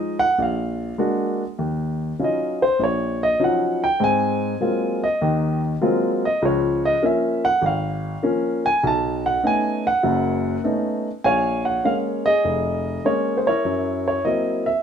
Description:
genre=solo jazz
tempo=100 BPM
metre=4/4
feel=swing 68% on 8ths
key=Bb minor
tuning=A4 = 440 Hz
part: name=warm grand piano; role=solo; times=0.0-14.8 s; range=F1 to A5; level=-19 LUFS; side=equal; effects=none
room=moderate studio reverb, RT60 0.9 s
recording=minimal, uncompressed stereo recording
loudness=-19 LUFS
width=side -8 dB against mid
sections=0.0-11.2 A section; 11.2-14.8 B section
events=grand piano solo 0.0-11.2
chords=0.4 Bb7b13; 1.6 Ebm9; 4.0 Ab13; 6.4 Db6; 8.8 B9; 11.2 Bbm7; 13.6 Gb7#11

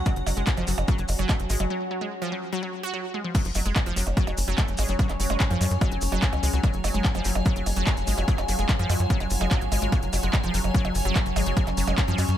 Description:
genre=psychedelic trance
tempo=146 BPM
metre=4/4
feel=straight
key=unclear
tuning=A4 = 440 Hz
part: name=overtone-sweeping drone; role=sustained chords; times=0.0-12.4 s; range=F#3 to E#4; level=-34 LUFS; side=left 2 dB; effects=chorus, built-in reverb, sidechain pumping
part: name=wide unison pluck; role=riff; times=0.0-12.3 s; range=E#3 to F#4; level=-31 LUFS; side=right 1 dB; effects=auto-pan, sidechain pumping, digital delay
part: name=tight sequencer bass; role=bass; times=0.0-12.4 s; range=F#1 to F#2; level=-26 LUFS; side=equal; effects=tube saturation
part: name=granular cloud pad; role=texture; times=0.0-12.4 s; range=F#3 to G#5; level=-33 LUFS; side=equal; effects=built-in reverb, sidechain pumping
part: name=electronic kick drum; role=drums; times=0.1-12.1 s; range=none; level=-23 LUFS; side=equal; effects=small room ambience
part: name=techno drum kit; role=drums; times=0.1-12.4 s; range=crash cymbal, handclaps, hi-hat, percussion blips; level=-31 LUFS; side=right 2 dB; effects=overdrive, small room ambience
part: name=maracas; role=percussion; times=0.1-12.4 s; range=none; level=-38 LUFS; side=left 2 dB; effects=none
part: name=swell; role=sound effects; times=2.7-3.3 s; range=none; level=-39 LUFS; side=right 4 dB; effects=none
room=digital ambience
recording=none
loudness=-22 LUFS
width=side -11 dB against mid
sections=0.0-3.3 A section; 3.3-12.4 B section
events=break 1.7-3.3; swell 2.7-3.3; drop 3.3-12.4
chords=0.0 F#5

